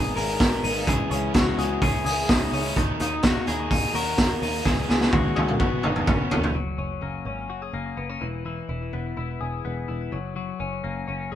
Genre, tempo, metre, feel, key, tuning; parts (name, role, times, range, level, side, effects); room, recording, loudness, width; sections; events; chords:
jangly indie pop; 126 BPM; 4/4; straight; A4 = 439 Hz
electric guitar through a small old amp; melody; 0.0-6.4 s; C#4 to A#4; -29 LUFS; left 3 dB
crunchy overdriven guitar; accompaniment; 0.0-6.6 s; F#2 to E4; -31 LUFS; right 6 dB; harmonic tremolo
twelve-string electric guitar; arpeggios; 0.0-11.4 s; D#3 to G#4; -30 LUFS; left 5 dB; ping-pong delay
picked electric bass; bass; 0.0-11.4 s; E1 to D#2; -32 LUFS; right 1 dB
raw garage drum kit; drums; 0.2-6.5 s; hi-hat, kick drum, snare drum, toms; -23 LUFS; right 1 dB
moderate studio reverb, RT60 0.5 s; band playing live in one room; -22 LUFS; side -11 dB against mid
0.0-6.6 A section; 6.6-11.4 B section
drum fill 4.7-6.6
0.0 G#m; 0.9 C#m; 2.8 D#m; 4.7 C#m; 5.6 F#sus4; 6.6 F#add9; 8.2 E; 10.1 F#